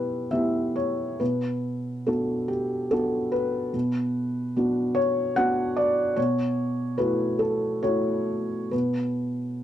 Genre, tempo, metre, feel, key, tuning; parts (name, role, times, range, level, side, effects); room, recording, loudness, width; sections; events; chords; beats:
neoclassical minimalist piano; 72 BPM; 3/4; uneven beats, rubato; B minor; A4 = 439 Hz
felt-muted upright piano; solo; 0.0-9.6 s; B2 to F#5; -23 LUFS; equal
light reverb; dark, warm production; -23 LUFS; side -11 dB against mid
0.0-9.6 A section
0.0 Em/B; 1.2 Bm; 6.2 F#m7/B; 8.7 N.C.
0.31 | 1.20 2.07 2.91 | 3.74 4.55 5.37 | 6.17 6.98 7.83 | 8.73